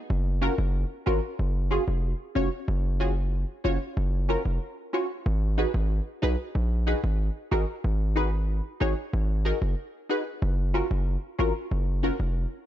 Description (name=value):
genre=dancehall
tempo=93 BPM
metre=4/4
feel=straight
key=unclear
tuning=A4 = 438 Hz
part: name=hard-hitting 808-style bass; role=bass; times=0.1-12.5 s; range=E#1 to B1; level=-25 LUFS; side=equal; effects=none
part: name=punchy chord stab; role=accompaniment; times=0.4-12.2 s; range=C#4 to C#5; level=-30 LUFS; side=equal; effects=chorus, phaser
room=little or no reverb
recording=dark, warm production, nothing above 7.9 kHz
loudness=-25 LUFS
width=side -12 dB against mid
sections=0.0-12.7 A section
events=none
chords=0.1 F#maj7(no3); 5.3 G#m7; 10.4 F#maj7